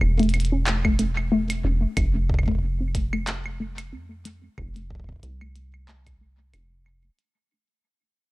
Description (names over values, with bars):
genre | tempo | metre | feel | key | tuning
IDM | 92 BPM | 4/4 | swing 56% on 16ths | unclear | A4 = 439 Hz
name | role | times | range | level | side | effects
deep acid bass | bass | 0.0-7.1 s | E1 to F2 | -25 LUFS | equal | tube saturation
glitchy drum kit | drums | 0.0-7.3 s | claves, handclaps, hi-hat | -30 LUFS | right 1 dB | small room ambience, tape echo
warbly dusty pluck | arpeggios | 0.2-7.1 s | A3 to D4 | -26 LUFS | left 1 dB | chorus, tape echo
electronic kick drum | drums | 0.8-6.2 s | none | -27 LUFS | equal | small room ambience
room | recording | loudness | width
digital ambience | dry, gritty hardware recording, cassette tape | -22 LUFS | side -20 dB against mid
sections
0.0-7.2 A section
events
fade-out 0.0-7.2; filter sweep on synth arpeggio sound 0.0-7.2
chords
0.0 A5; 2.0 F